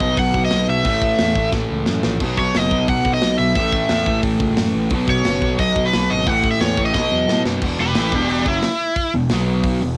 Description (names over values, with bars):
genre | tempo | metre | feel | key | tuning
punk rock | 177 BPM | 4/4 | straight | unclear | A4 = 444 Hz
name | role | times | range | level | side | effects
cranked stack guitar | melody | 0.0-9.1 s | D4 to F#5 | -22 LUFS | equal | overdrive
distorted electric guitar | riff | 0.0-9.9 s | E2 to B3 | -24 LUFS | equal | distortion
sludgy distorted guitar | riff | 0.0-10.0 s | E2 to B3 | -28 LUFS | equal | none
fuzz picked electric bass | bass | 0.0-10.0 s | E1 to A2 | -27 LUFS | equal | overdrive
tight metal drum kit | drums | 0.0-9.7 s | crash cymbal, hi-hat, kick drum, snare drum | -26 LUFS | equal | cassette tape
room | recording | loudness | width
little or no reverb | home recording on cassette | -18 LUFS | mono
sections
0.0-7.6 A section; 7.6-10.0 B section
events
drum fill 1.5-2.2, 6.9-7.6; overdriven electric guitar solo 7.6-10.0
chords
0.0 B; 0.9 A5; 2.2 B; 3.6 A5; 4.9 B5; 6.3 A5; 6.9 B7; 7.6 E5; 9.3 B5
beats
0.18 0.52 | 0.85 1.19 1.53 1.87 | 2.21 2.54 2.88 3.22 | 3.56 3.90 4.24 4.58 | 4.91 5.25 5.59 5.93 | 6.27 6.60 6.94 7.28 | 7.62 7.96 8.29 8.63 | 8.97 9.31 9.64